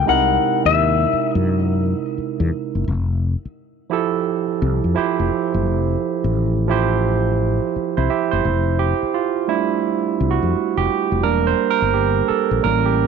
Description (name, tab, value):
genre	R&B, neo-soul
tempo	86 BPM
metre	4/4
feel	swing 64% on 16ths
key	F major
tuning	A4 = 440 Hz
part	electric guitar through a small old amp	melody	0.0-1.3 s	E5 to Gb5	-18 LUFS	left 12 dB	warbly pitch drift
part	barky tine electric piano	accompaniment	0.0-13.1 s	C3 to E5	-19 LUFS	right 10 dB	overdrive
part	mellow fretless electric bass	bass	0.0-13.1 s	E1 to Gb2	-20 LUFS	left 2 dB	none
room	moderate plate reverb, RT60 3.5 s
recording	1960s-style stereo with parts hard left and right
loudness	-17 LUFS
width	side -6 dB against mid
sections	0.0-8.4 A section; 8.4-13.1 B section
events	tine electric piano solo 8.4-13.1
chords	0.1 C7alt; 2.9 Fmaj9; 8.4 F69; 11.2 Em7b5